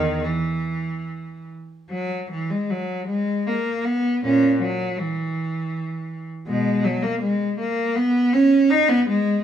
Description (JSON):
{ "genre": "classical, baroque-style suite movement for unaccompanied cello", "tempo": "79 BPM", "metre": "3/4", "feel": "uneven beats, rubato", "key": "B major", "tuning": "A4 = 436 Hz", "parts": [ { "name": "clear cello", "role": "solo", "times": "0.0-9.4 s", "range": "E2 to D#4", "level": "-20 LUFS", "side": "equal", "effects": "none" } ], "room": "moderate stone room reverb, RT60 1.1 s", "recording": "heard from further back in the room", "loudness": "-19 LUFS", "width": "side -9 dB against mid", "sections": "0.0-1.9 A section; 1.9-9.4 A section", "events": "none", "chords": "none", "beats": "0.23 1.06 | 1.90 2.68 3.45 | 4.22 4.97 5.72 | 6.46 7.21 7.95 | 8.70" }